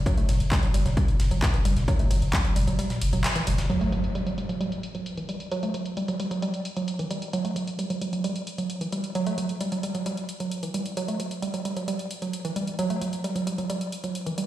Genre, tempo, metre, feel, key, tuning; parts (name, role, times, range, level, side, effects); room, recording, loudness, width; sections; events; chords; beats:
driving peak-time techno; 132 BPM; 4/4; straight; A4 = 440 Hz
saturated sub bass; bass; 0.0-3.7 s; F#1; -25 LUFS; equal; sidechain pumping, low-pass filter
woody wave-folded pluck; riff; 0.1-14.5 s; E3 to A3; -28 LUFS; right 2 dB; chorus, sidechain pumping, ping-pong delay
breakbeat sampler-style drum kit; drums; 0.1-3.7 s; ride cymbal, snare drum; -41 LUFS; equal; high-pass filter on snare, high-pass filter on cymbals
electronic kick drum; drums; 0.1-2.4 s; -23 LUFS; equal; overdrive
techno drum kit; drums; 0.1-14.5 s; handclaps, hi-hat, ride cymbal, toms; -33 LUFS; equal; overdrive, low-pass filter on snare, low-pass filter on hats, low-pass filter on toms, low-pass filter on cymbals
impact; sound effects; 3.7-5.5 s; -32 LUFS; equal
moderate digital room reverb, RT60 0.9 s, digital ambience; played on a big sound system in a bare room, stone room reverb; -25 LUFS; side -13 dB against mid
0.0-3.7 A section; 3.7-14.5 B section
drop 0.0-3.7; kick drops out 2.8-3.7; band accent 3.2; impact 3.7-5.5
0.0 F#5; 3.7 Emadd9 (rootless)
| 0.06 0.52 0.97 1.42 | 1.88 2.33 2.79 3.24 | 3.70 4.15 4.61 5.06 | 5.51 5.97 6.42 6.88 | 7.33 7.79 8.24 8.70 | 9.15 9.61 10.06 10.52 | 10.97 11.42 11.88 12.33 | 12.79 13.24 13.70 14.15